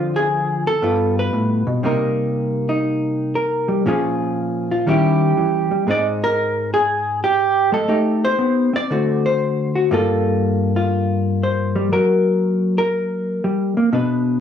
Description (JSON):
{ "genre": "solo jazz", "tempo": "119 BPM", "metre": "4/4", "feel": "swing 68% on 8ths", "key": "G minor", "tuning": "A4 = 441 Hz", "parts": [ { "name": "hollow-body jazz guitar", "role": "solo", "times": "0.0-14.4 s", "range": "G2 to D5", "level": "-16 LUFS", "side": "equal", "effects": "none" } ], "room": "wet booth ambience, RT60 0.2 s", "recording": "home recording on cassette, studio reverb", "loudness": "-16 LUFS", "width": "side -8 dB against mid", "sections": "0.0-13.9 A section", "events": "none", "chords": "0.0 Dm7b5; 0.8 G7; 1.8 Cm7; 3.8 Bbm7; 4.9 Eb7b9; 5.9 Abmaj7; 7.9 Am7b5; 8.9 D7; 9.9 Gm9; 11.9 F#" }